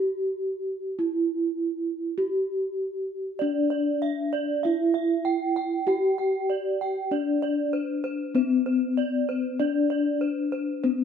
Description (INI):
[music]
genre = gamelan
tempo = 48 BPM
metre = 4/4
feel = straight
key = unclear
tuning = A4 = 440 Hz
[part]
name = gamelan-type bronze metallophone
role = melody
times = 0.0-11.0 s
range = C4-45c to G4-35c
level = -24 LUFS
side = left 2 dB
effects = none
[part]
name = gamelan-type bronze metallophone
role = arpeggios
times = 3.4-11.0 s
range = C5-45c to G5-35c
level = -30 LUFS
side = right 6 dB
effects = none
[sound]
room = moderate stone room reverb, RT60 1.1 s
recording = band playing live in one room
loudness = -24 LUFS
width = side -7 dB against mid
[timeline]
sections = 0.0-3.4 A section; 3.4-11.0 B section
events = none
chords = none